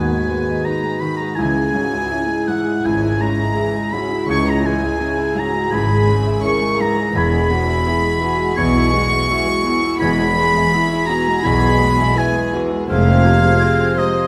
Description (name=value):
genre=cinematic, emotional film score for orchestra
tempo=83 BPM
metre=4/4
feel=rubato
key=unclear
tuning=A4 = 442 Hz
part: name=warm studio violin section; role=melody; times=0.0-14.3 s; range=G#4 to C5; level=-32 LUFS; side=equal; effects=none
part: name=mellow clarinet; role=second line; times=0.0-14.3 s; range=B3 to F4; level=-30 LUFS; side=equal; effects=none
part: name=mellow large flute ensemble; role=second line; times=0.0-14.3 s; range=G#6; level=-31 LUFS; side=equal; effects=none
part: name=warm oboe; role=second line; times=0.0-14.3 s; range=D#5 to C#6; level=-23 LUFS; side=equal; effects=none
part: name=warm studio violin section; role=second line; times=0.0-14.3 s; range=D#5 to C#6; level=-29 LUFS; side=equal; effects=none
part: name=bright concert grand piano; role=accompaniment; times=0.0-14.3 s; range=C#2 to E4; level=-26 LUFS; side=equal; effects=none
part: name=dark studio viola section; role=accompaniment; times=0.0-14.3 s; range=D#3 to Ab4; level=-30 LUFS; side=equal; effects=none
part: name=warm French horn section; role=sustained chords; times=0.0-14.3 s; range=A#3 to C5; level=-26 LUFS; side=equal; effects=none
part: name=concert harp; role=arpeggios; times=0.0-14.3 s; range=G#2 to E6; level=-30 LUFS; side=equal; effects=none
part: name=dark studio cello section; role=bass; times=0.0-13.5 s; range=C#2 to B2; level=-25 LUFS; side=equal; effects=none
part: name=warm chamber double bass section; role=bass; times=0.0-13.5 s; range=E1 to D#2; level=-24 LUFS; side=equal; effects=none
room=moderate scoring stage reverb, RT60 1.8 s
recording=none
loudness=-17 LUFS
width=mono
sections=0.0-14.3 A section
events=none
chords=0.0 G#m; 1.4 C#m; 7.1 E; 12.9 Fm